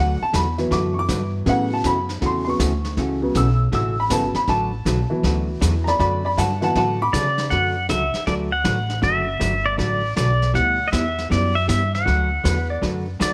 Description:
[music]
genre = country, western swing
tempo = 158 BPM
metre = 4/4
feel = swing 66% on 8ths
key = D major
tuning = A4 = 437 Hz
[part]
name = clear upright piano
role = accompaniment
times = 0.0-7.5 s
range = C#3 to E6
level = -24 LUFS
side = equal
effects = none
[part]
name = vintage hollow-body jazz guitar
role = accompaniment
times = 0.0-13.3 s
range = C#3 to B4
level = -29 LUFS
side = equal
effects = none
[part]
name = upright bass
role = bass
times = 0.0-13.3 s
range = F#1 to C#3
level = -25 LUFS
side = equal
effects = none
[part]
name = vintage brush drum kit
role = drums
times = 0.3-13.3 s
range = brushed snare drum, hi-hat, kick drum, snare drum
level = -31 LUFS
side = equal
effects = none
[part]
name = pedal steel guitar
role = melody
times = 7.1-13.3 s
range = D5 to F#5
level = -24 LUFS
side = equal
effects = none
[part]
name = clean lap steel guitar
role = second line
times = 12.5-12.8 s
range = B4 to D5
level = -33 LUFS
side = equal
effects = none
[sound]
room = light reverb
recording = none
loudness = -21 LUFS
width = mono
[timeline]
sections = 0.0-7.5 A section; 7.5-13.3 B section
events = upright piano solo 0.0-7.5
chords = 0.0 D6; 1.5 A6; 4.5 D6; 10.6 G6; 12.1 D6

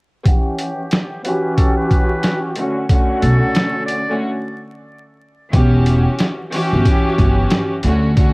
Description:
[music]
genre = hip hop, boom-bap hip-hop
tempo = 91 BPM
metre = 4/4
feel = swing 61% on 16ths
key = E dorian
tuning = A4 = 441 Hz
[part]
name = warm chamber string section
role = accompaniment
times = 0.2-8.3 s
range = D3 to F#5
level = -19 LUFS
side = equal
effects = high-pass filter, low-pass filter
[part]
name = boom bap sampler-style drum kit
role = drums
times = 0.3-8.3 s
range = hi-hat, kick drum, snare drum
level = -16 LUFS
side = equal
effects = cassette tape
[part]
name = trumpet with metal mute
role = melody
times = 0.6-4.2 s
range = G4 to D5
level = -25 LUFS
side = equal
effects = high-pass filter, low-pass filter, cassette tape, analog delay
[part]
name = upright bass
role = bass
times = 3.2-8.3 s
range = E1 to D2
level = -15 LUFS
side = equal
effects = tube saturation
[sound]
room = studio reverb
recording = home recording on cassette, vinyl crackle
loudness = -14 LUFS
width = side -28 dB against mid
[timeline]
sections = 0.3-5.5 A section; 5.5-8.3 B section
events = filter sweep 0.3-5.5; break 4.2-5.5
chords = 0.3 Em69; 2.6 Bm9 (rootless); 5.5 Em69

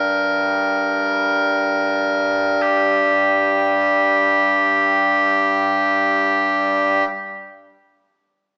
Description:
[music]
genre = celtic folk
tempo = free time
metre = none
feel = none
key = G minor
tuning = A4 = 439 Hz
[part]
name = loud bright bagpipes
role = solo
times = 0.0-7.0 s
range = G2 to Bb4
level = -15 LUFS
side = equal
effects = none
[sound]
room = wet recital hall reverb, RT60 1.6 s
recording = recorded in a church or concert hall, small speaker sound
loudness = -14 LUFS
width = side -40 dB against mid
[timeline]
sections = 0.0-2.6 A section; 2.6-6.3 B section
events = slowing down 0.0-2.6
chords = none

